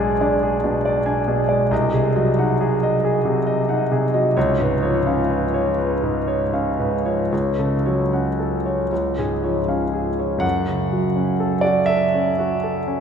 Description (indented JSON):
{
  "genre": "classical, romantic nocturne for solo piano",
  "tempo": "37-48 BPM (dotted quarters)",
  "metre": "6/8",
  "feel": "rubato",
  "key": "F# minor",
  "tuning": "A4 = 438 Hz",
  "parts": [
    { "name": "clear grand piano", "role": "solo", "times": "0.0-13.0 s", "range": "B1 to G#5", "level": "-18 LUFS", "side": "equal", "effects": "none" }
  ],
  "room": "wet cathedral reverb, RT60 5.5 s",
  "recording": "recorded in a church or concert hall",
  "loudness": "-18 LUFS",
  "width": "side -7 dB against mid",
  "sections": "0.0-10.4 A section; 10.4-13.0 B section",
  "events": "none",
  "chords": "0.0 G#dim/B; 1.7 G#7/B#; 4.4 C#7; 7.3 F#m/C#; 8.9 C#; 10.4 F#m"
}